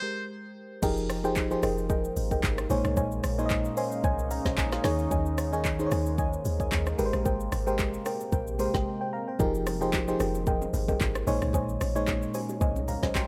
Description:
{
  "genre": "amapiano",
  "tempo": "112 BPM",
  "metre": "4/4",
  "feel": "swing 55% on 16ths",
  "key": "F minor",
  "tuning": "A4 = 440 Hz",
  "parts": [
    { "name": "FM electric piano", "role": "accompaniment", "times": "0.0-13.3 s", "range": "Bb2 to C6", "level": "-33 LUFS", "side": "equal", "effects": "none" },
    { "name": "deep dark ambient pad", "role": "sustained chords", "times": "1.8-13.3 s", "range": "C3 to G5", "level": "-41 LUFS", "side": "equal", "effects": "chorus, built-in reverb, sidechain pumping" },
    { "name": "soft round pluck", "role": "stabs", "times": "0.8-13.3 s", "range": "Ab4 to Ab5", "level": "-36 LUFS", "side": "equal", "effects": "chorus, tape echo" },
    { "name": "deep log drum bass", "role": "bass", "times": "0.8-13.3 s", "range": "F1 to Eb2", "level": "-34 LUFS", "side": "equal", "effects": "none" },
    { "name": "deep house drum kit", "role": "drums", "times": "0.8-13.3 s", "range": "crash cymbal, handclaps, hi-hat, kick drum, rim click, shaker, snare drum", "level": "-34 LUFS", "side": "equal", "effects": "none" },
    { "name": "congas and bongos", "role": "percussion", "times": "9.4-13.3 s", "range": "none", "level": "-40 LUFS", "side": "equal", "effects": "none" }
  ],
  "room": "light reverb",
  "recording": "dry, gritty hardware recording",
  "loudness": "-28 LUFS",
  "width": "mono",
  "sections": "0.8-13.3 A section",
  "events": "break 0.0-0.8, 8.9-9.4; drop 0.8-13.3; FM electric piano fill 3.5-5.1",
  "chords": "0.0 Abmaj9; 0.8 Fm11; 2.7 Bbm11; 4.8 Eb7sus4; 7.0 Abmaj9; 9.4 Fm11; 11.3 Bbm11",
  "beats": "0.29 | 0.83 1.36 1.90 2.43 | 2.97 3.51 4.04 4.58 | 5.11 5.65 6.18 6.72 | 7.26 7.79 8.33 8.86 | 9.40 9.93 10.47 11.01 | 11.54 12.08 12.61 13.15"
}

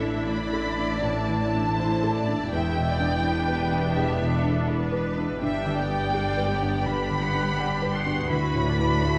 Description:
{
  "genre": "cinematic, emotional film score for orchestra",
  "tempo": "83 BPM",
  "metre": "4/4",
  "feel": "rubato",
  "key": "E minor",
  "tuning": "A4 = 441 Hz",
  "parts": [
    { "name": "rich symphonic violin section", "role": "melody", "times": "0.0-9.2 s", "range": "E5 to C6", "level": "-32 LUFS", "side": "equal", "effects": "none" },
    { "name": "clear symphonic violin section", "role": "second line", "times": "0.0-9.2 s", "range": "G4 to E5", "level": "-36 LUFS", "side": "equal", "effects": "none" },
    { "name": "clear symphonic viola section", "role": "accompaniment", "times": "0.0-9.2 s", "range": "G3 to F#5", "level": "-35 LUFS", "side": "equal", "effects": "none" },
    { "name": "felt-muted upright piano", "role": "accompaniment", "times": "0.0-9.2 s", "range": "D2 to F#5", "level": "-31 LUFS", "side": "equal", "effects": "none" },
    { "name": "concert harp", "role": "arpeggios", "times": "0.0-9.2 s", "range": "E2 to F#5", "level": "-36 LUFS", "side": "equal", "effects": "none" },
    { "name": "rich symphonic double bass section", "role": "bass", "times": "0.0-9.2 s", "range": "E1 to D2", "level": "-33 LUFS", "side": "equal", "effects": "none" },
    { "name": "warm symphonic cello section", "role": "bass", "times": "0.0-9.2 s", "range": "D2 to A2", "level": "-34 LUFS", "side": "equal", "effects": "none" }
  ],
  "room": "moderate scoring stage reverb, RT60 1.4 s",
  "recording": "worn, warbling old tape, cassette tape, warbly pitch drift",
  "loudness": "-25 LUFS",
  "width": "mono",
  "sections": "0.0-9.2 A section",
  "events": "none",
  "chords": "0.0 Asus4; 2.5 Em7; 5.4 Gmaj7; 8.3 Dadd9",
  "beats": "0.27 1.04 1.79 | 2.52 3.24 3.96 4.68 | 5.41 6.13 6.86 7.58 | 8.31 9.04"
}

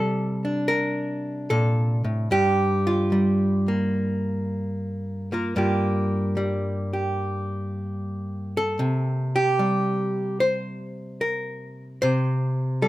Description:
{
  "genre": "solo jazz",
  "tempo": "74 BPM",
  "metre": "4/4",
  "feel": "swing 68% on 8ths",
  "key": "G minor",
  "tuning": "A4 = 438 Hz",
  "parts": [
    { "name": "archtop guitar, miked and amplified", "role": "solo", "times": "0.0-12.9 s", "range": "G2 to C5", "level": "-22 LUFS", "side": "equal", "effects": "none" }
  ],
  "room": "light reverb",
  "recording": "close, detailed microphones",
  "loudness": "-22 LUFS",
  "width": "side -16 dB against mid",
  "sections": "0.0-12.9 A section",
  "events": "none",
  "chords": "0.0 Csus2; 2.3 Gm7; 8.8 C5",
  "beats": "0.68 1.50 | 2.31 3.12 3.93 4.74 | 5.55 6.36 7.17 7.98 | 8.79 9.60 10.41 11.21 | 12.02 12.83"
}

